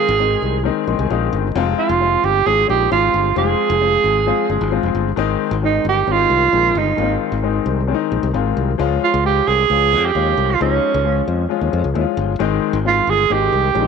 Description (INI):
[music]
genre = uptempo 1960s-style soul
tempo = 133 BPM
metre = 4/4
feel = straight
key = Ab major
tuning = A4 = 440 Hz
[part]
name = breathy tenor saxophone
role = melody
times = 0.0-13.9 s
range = Db4 to Ab4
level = -16 LUFS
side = right 8 dB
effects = tape echo
[part]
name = clear concert grand piano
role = accompaniment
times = 0.0-13.9 s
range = Eb3 to C6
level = -21 LUFS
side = left 15 dB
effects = none
[part]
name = modern bright fingered electric bass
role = bass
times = 0.1-13.9 s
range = F1 to F2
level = -20 LUFS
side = left 2 dB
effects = none
[sound]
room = moderate echo chamber reverb, RT60 2.4 s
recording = 1960s-style stereo with parts hard left and right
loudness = -15 LUFS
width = side -6 dB against mid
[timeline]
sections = 0.0-5.2 A section; 5.2-13.9 B section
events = grand piano fill 0.6-1.6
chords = 0.0 Ab; 1.6 Fm; 5.2 Ab; 8.8 Db; 12.4 Ab